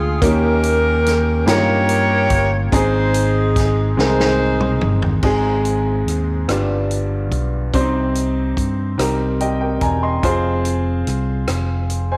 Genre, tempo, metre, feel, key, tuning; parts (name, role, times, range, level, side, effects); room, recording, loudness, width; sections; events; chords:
slow gospel; 48 BPM (dotted quarters); 6/8; straight; Ab major; A4 = 440 Hz
mellow saxophone section; melody; 0.0-5.2 s; Db4 to Db5; -21 LUFS; equal
clear baby grand piano; accompaniment; 0.0-12.2 s; G2 to C6; -22 LUFS; equal
fingered electric bass; bass; 0.0-12.2 s; Fb1 to G2; -22 LUFS; equal
swinging big-band drum kit; drums; 0.2-12.1 s; crash cymbal, hi-hat, kick drum, rim click, snare drum, toms; -26 LUFS; equal
moderate echo chamber reverb, RT60 2.4 s; -18 LUFS; mono
0.0-5.2 A section; 5.2-12.2 B section
drum fill 4.0-5.2; grand piano fill 9.0-10.2
0.2 Eb7; 2.7 Ab; 6.5 G7; 7.7 Cm; 10.2 Fm